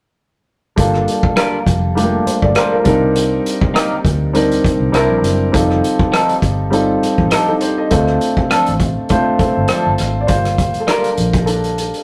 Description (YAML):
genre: lush 1970s-style soul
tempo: 101 BPM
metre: 4/4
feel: swing 54% on 16ths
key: unclear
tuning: A4 = 441 Hz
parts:
  - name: warm grand piano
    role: accompaniment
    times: 0.8-12.0 s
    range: G3 to F5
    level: -18 LUFS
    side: equal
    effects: none
  - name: vintage muted fingered electric bass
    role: bass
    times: 0.8-11.9 s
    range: F1 to D2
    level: -22 LUFS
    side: equal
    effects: none
  - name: vintage drum kit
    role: drums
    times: 0.8-12.0 s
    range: hi-hat, kick drum, rim click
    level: -21 LUFS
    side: equal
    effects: none
  - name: clean electric guitar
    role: riff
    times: 1.4-11.1 s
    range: F3 to Bb4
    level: -20 LUFS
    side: equal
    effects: none
room: moderate studio reverb, RT60 0.6 s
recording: rough rehearsal-room recording, tube saturation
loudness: -15 LUFS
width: mono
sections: 0.8-10.3 A section; 10.3-12.0 B section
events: grand piano solo 10.3-12.0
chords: 0.8 Gm7; 2.9 Cm7; 4.9 C7; 5.5 F7; 7.9 Dm7; 10.3 Gm7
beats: | 0.78 1.37 1.97 2.56 | 3.16 3.75 4.35 4.94 | 5.54 6.13 6.72 7.32 | 7.91 8.51 9.10 9.70 | 10.29 10.88 11.48